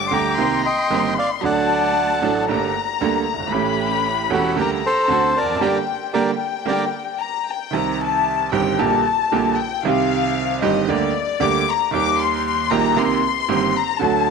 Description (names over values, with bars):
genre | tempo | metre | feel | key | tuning
tango | 114 BPM | 4/4 | rubato | G minor | A4 = 440 Hz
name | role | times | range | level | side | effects
warm chamber violin section | second line | 0.0-14.3 s | D5 to D6 | -21 LUFS | left 11 dB | none
bright concert grand piano | accompaniment | 0.0-14.3 s | E1 to A4 | -21 LUFS | right 9 dB | none
clear studio string section | stabs | 0.0-6.8 s | D3 to G4 | -30 LUFS | right 8 dB | none
bandoneon | melody | 0.1-6.8 s | F#4 to C6 | -21 LUFS | right 1 dB | none
room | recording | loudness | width
moderate plate reverb, RT60 2.8 s | 1960s-style stereo with parts hard left and right | -17 LUFS | side -5 dB against mid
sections
0.0-7.7 A section; 7.7-14.3 B section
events
band accent 5.6-7.7; violin section solo 7.7-14.3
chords
0.4 Cm7; 1.4 D; 2.5 Gmadd9; 3.5 A7; 4.6 Gm/D; 5.1 D7; 5.6 Gm; 7.7 Cm; 8.8 Gm/Bb; 9.8 Cm; 10.9 Gm/D; 11.9 Eb; 13.0 Cm7